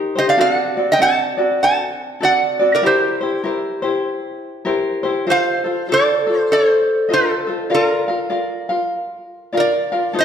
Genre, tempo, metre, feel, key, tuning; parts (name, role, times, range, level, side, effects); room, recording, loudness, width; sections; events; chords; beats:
Hawaiian; 98 BPM; 4/4; swing 64% on 8ths; Bb major; A4 = 440 Hz
tenor ukulele; accompaniment; 0.0-10.2 s; C4 to F5; -20 LUFS; left 2 dB
metal-body resonator slide guitar; melody; 0.2-10.2 s; F4 to A5; -16 LUFS; right 1 dB
wet recital hall reverb, RT60 1.7 s; -15 LUFS; side -8 dB against mid
0.0-10.1 A section
0.4 D7; 2.8 C7; 5.3 F7; 7.7 Bb
| 0.38 0.99 1.60 2.21 | 2.82 3.43 4.04 4.65 | 5.26 5.87 6.48 7.09 | 7.70 8.31 8.92 9.53 | 10.14